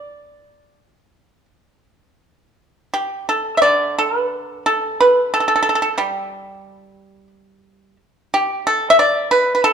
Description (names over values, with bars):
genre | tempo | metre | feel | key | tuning
chinese traditional, Chinese solo plucked strings | 80-93 BPM | 4/4 | rubato | unclear | A4 = 440 Hz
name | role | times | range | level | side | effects
pipa | solo | 0.0-9.7 s | D3 to E5 | -15 LUFS | right 1 dB | none
room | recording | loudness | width
moderate recital hall reverb, RT60 1.4 s | dark, warm production | -15 LUFS | side -7 dB against mid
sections
0.0-2.2 A section; 2.2-9.7 B section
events
none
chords
none